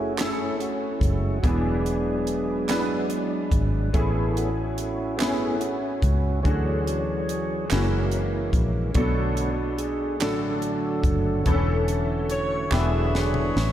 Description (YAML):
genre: slow gospel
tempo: 48 BPM (dotted quarters)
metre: 6/8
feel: straight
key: A major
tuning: A4 = 440 Hz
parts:
  - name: bright grand piano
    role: accompaniment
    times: 0.0-13.7 s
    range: A2 to B4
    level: -29 LUFS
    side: left 1 dB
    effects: ensemble chorus
  - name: tonewheel organ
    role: sustained chords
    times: 0.0-13.7 s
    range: D3 to C#5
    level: -27 LUFS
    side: right 1 dB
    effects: slow rotary speaker
  - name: fingered electric bass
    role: bass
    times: 0.0-13.7 s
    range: E1 to D2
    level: -26 LUFS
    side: equal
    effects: none
  - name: crisp fusion drum kit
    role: drums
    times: 0.2-13.7 s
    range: hi-hat, kick drum, snare drum, toms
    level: -28 LUFS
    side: equal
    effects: none
  - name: group handclap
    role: percussion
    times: 0.2-13.1 s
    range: none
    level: -37 LUFS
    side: right 6 dB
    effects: none
  - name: mellow saxophone section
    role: melody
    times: 12.3-13.7 s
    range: G#4 to E5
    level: -27 LUFS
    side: left 1 dB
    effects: diffuse ambient delay
room: moderate cathedral reverb, RT60 4.6 s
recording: dreamy mix soaked in reverb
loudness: -22 LUFS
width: side -11 dB against mid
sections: 0.0-13.7 A section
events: tonewheel organ solo 0.0-13.7; drum fill 12.7-13.7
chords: 0.0 F#m7; 1.4 E7; 3.9 Amaj7; 6.4 Dmaj7; 7.7 F#7; 9.0 Bm7; 10.2 D/A; 11.5 A/E; 12.7 E7